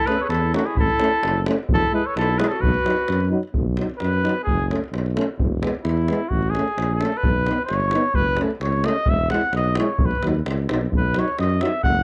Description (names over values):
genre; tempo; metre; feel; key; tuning
balkan folk, Balkan brass band; 130 BPM; 2/4; straight; B mixolydian; A4 = 439 Hz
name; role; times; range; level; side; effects
clear flugelhorn; melody; 0.0-12.0 s; E4 to F#5; -25 LUFS; equal; slapback echo
warm clarinet; second line; 0.0-3.3 s; D#4 to A4; -32 LUFS; equal; none
mellow trombone; accompaniment; 0.1-11.7 s; B3 to E4; -30 LUFS; equal; none
warm euphonium; accompaniment; 0.1-11.7 s; F#3 to B3; -28 LUFS; equal; none
davul; percussion; 0.1-11.9 s; none; -28 LUFS; equal; none
warm tuba; bass; 0.3-12.0 s; E1 to F#2; -26 LUFS; equal; tube saturation
room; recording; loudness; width
light reverb; dry, close 1970s-style studio recording; -21 LUFS; mono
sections
0.0-3.5 A section; 3.5-12.0 B section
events
flugelhorn solo 3.5-12.0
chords
0.0 A; 1.7 E; 2.6 B; 4.5 F#m; 5.4 E; 6.3 A; 7.2 B; 8.2 F#m; 9.1 E; 10.0 B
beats
0.30 | 0.76 1.23 | 1.69 2.15 | 2.62 3.08 | 3.54 4.01 | 4.47 4.93 | 5.40 5.86 | 6.32 6.79 | 7.25 7.71 | 8.17 8.63 | 9.09 9.55 | 10.01 10.47 | 10.92 11.38 | 11.84